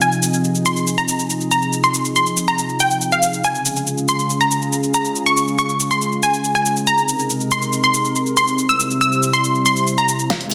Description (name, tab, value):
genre	uplifting trance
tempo	140 BPM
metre	4/4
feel	straight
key	F minor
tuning	A4 = 440 Hz
part	unison pluck	melody	0.0-10.5 s	F5 to E6	-20 LUFS	equal	cassette tape, sidechain pumping, tape echo
part	lush unison pad	sustained chords	0.0-10.5 s	C3 to C5	-23 LUFS	equal	chorus, sidechain pumping
part	big-room dance drum kit	drums	0.0-10.5 s	hi-hat, shaker, snare drum	-25 LUFS	equal	high-pass filter on perc, high-pass filter on snare, high-pass filter on hats
part	electronic kick drum	drums	10.3-10.4 s	none	-31 LUFS	equal	high-pass filter on kick
part	riser	sound effects	10.4-10.5 s	none	-32 LUFS	equal	none
room	wet digital room reverb, RT60 1.0 s, digital ambience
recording	dense, heavily limited modern master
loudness	-18 LUFS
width	mono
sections	0.0-10.3 A section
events	filter sweep on analog synth pad 0.0-10.3; drum fill 10.3; riser 10.4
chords	0.0 Fm7; 3.4 Db; 6.9 Abadd9; 8.6 C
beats	| 0.01 0.44 0.87 1.30 | 1.73 2.16 2.59 3.02 | 3.44 3.87 4.30 4.73 | 5.16 5.59 6.01 6.44 | 6.87 7.30 7.73 8.16 | 8.59 9.02 9.44 9.87 | 10.30